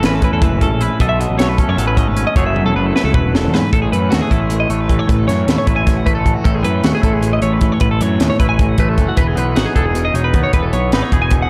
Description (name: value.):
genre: math rock and midwest emo.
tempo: 308 BPM (eighths).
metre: 7/8.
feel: straight.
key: unclear.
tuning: A4 = 440 Hz.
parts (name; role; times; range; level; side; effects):
twangy electric guitar; accompaniment; 0.0-11.5 s; F#2 to A4; -22 LUFS; equal; spring reverb.
twelve-string electric guitar; arpeggios; 0.0-11.5 s; F#4 to G#5; -23 LUFS; equal; spring reverb.
fuzz picked electric bass; bass; 0.0-11.5 s; E1 to F#2; -20 LUFS; equal; overdrive.
crisp fusion drum kit; drums; 0.0-11.4 s; hi-hat, kick drum, snare drum, toms; -19 LUFS; equal; none.
room: light reverb.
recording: dark, warm production.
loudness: -15 LUFS.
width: mono.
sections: 0.0-3.7 A section; 3.7-11.5 B section.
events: drum fill 2.6-3.7.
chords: 0.0 A69; 1.0 B9; 2.4 F#m9; 3.7 B7sus4/A; 9.2 Emaj7.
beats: 0.02 0.22 0.41 0.61 0.80 | 1.00 1.19 1.39 1.58 1.77 1.97 2.17 | 2.36 2.55 2.75 2.94 3.14 3.33 3.53 | 3.72 3.92 4.11 4.31 4.50 4.70 4.89 | 5.09 5.28 5.48 5.67 5.87 6.06 6.26 | 6.45 6.65 6.84 7.04 7.24 7.43 7.62 | 7.82 8.02 8.21 8.40 8.60 8.79 8.99 | 9.18 9.38 9.57 9.77 9.96 10.16 10.35 | 10.55 10.74 10.94 11.13 11.33.